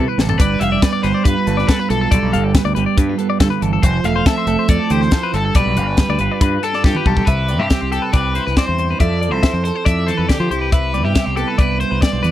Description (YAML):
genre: math rock and midwest emo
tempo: 140 BPM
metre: 4/4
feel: straight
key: C major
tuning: A4 = 440 Hz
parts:
  - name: twelve-string electric guitar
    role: accompaniment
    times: 0.0-12.3 s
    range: G2 to B4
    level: -21 LUFS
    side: right 7 dB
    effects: spring reverb
  - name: twelve-string electric guitar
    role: arpeggios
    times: 0.0-12.3 s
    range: G4 to F5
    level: -23 LUFS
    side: left 10 dB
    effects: none
  - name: growling fingered electric bass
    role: bass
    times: 0.0-12.3 s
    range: E1 to F3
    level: -20 LUFS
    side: equal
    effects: overdrive
  - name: crisp fusion drum kit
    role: drums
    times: 0.2-12.3 s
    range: hi-hat, kick drum, snare drum, toms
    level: -16 LUFS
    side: equal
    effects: none
  - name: crunchy overdriven guitar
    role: melody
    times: 0.4-12.3 s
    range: G4 to F5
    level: -22 LUFS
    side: equal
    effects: slapback echo
room: little or no reverb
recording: dry, close 1970s-style studio recording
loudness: -14 LUFS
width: side -12 dB against mid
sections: 0.0-7.3 A section; 7.3-12.3 B section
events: drum fill 0.0-0.4, 6.8-7.3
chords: 0.4 G9; 3.8 Fmaj7; 5.3 G9; 7.3 Cmaj7; 9.0 Fmaj7; 10.5 Cmaj7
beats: | 0.40 0.83 1.26 1.69 | 2.12 2.55 2.98 3.41 | 3.83 4.26 4.70 5.12 | 5.55 5.98 6.41 6.84 | 7.28 7.71 8.14 8.57 | 9.00 9.43 9.86 10.30 | 10.73 11.16 11.59 12.02